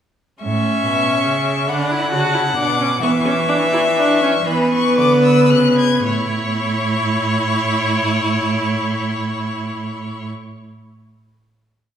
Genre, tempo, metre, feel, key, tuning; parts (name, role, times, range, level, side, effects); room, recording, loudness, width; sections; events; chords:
classical, baroque-style fugue for string quartet; 35-48 BPM (dotted quarters); 6/8; straight; A major; A4 = 440 Hz
warm violin; melody; 0.4-10.2 s; A5 to G#6; -23 LUFS; left 5 dB
rich violin; second line; 0.4-10.3 s; B4 to F#5; -20 LUFS; left 2 dB
rich viola; accompaniment; 0.4-10.3 s; B3 to F#4; -20 LUFS; right 1 dB
rich cello; bass; 0.4-10.3 s; A2 to E3; -21 LUFS; right 3 dB
wet recital hall reverb, RT60 1.6 s; recorded in a church or concert hall; -15 LUFS; side -9 dB against mid
0.4-6.1 exposition; 6.1-9.5 final chord
slowing down 0.4-7.8
0.4 A; 1.7 D; 3.0 E5; 4.5 E7(no3); 6.1 A